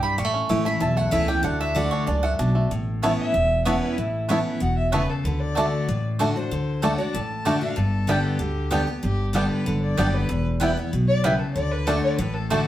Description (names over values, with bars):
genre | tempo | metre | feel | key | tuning
bluegrass | 190 BPM | 4/4 | straight | D major | A4 = 440 Hz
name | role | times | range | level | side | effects
picked steel-string acoustic guitar | accompaniment | 0.0-12.7 s | E2 to G4 | -25 LUFS | left 1 dB | none
bluegrass banjo | arpeggios | 0.0-12.6 s | G3 to G4 | -27 LUFS | right 2 dB | none
mandolin | stabs | 0.0-12.6 s | A3 to C#6 | -28 LUFS | right 2 dB | none
upright bass | bass | 0.2-12.6 s | E1 to D2 | -26 LUFS | equal | none
dark fiddle | second line | 3.2-12.7 s | E4 to A5 | -28 LUFS | left 1 dB | none
room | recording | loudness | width
wet studio reverb, RT60 0.8 s | heard from further back in the room | -20 LUFS | side -13 dB against mid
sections
0.0-2.7 A section; 2.7-12.7 A section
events
mandolin solo 0.0-2.7; fiddle solo 2.7-12.7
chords
0.2 A; 1.4 D; 2.7 Aadd9; 5.2 D; 7.8 G; 10.3 Em; 11.6 D